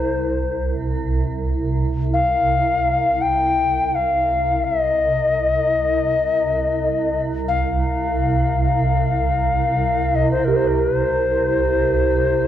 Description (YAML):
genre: world meditative, free-time meditation music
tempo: free time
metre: none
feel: none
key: C minor pentatonic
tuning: A4 = 440 Hz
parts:
  - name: reedy Native American-style cedar flute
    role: melody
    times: 0.0-12.5 s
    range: Bb4 to G5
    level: -19 LUFS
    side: left 4 dB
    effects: cassette tape
  - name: granular cloud pad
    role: drone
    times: 0.0-12.5 s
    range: C2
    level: -21 LUFS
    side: right 2 dB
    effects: built-in reverb, cassette tape
  - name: bronze singing bowl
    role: texture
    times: 10.5-12.5 s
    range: G4 to Bb4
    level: -23 LUFS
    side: right 10 dB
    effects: cassette tape
room: moderate spring reverb, RT60 1.7 s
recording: home recording on cassette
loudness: -17 LUFS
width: side -11 dB against mid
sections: 0.0-12.5 A section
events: none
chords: none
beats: free time